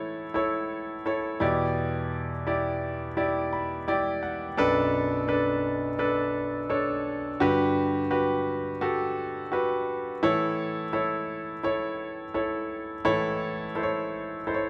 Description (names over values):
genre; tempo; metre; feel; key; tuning
pop; 85 BPM; 4/4; straight; unclear; A4 = 438 Hz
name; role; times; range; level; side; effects
clear concert grand piano; solo; 0.0-14.7 s; B1 to B5; -28 LUFS; equal; none
room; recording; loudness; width
wet large studio reverb, RT60 1.1 s; band playing live in one room; -28 LUFS; mono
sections
0.0-14.7 A section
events
grand piano fill 3.2-4.6, 14.5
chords
0.0 A; 1.4 Em7; 4.6 Bm7; 7.4 Gmaj7; 10.2 A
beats
0.35 1.06 | 1.77 2.47 3.18 3.88 | 4.59 5.30 6.00 6.71 | 7.42 8.12 8.83 9.53 | 10.24 10.95 11.65 12.36 | 13.06 13.77 14.48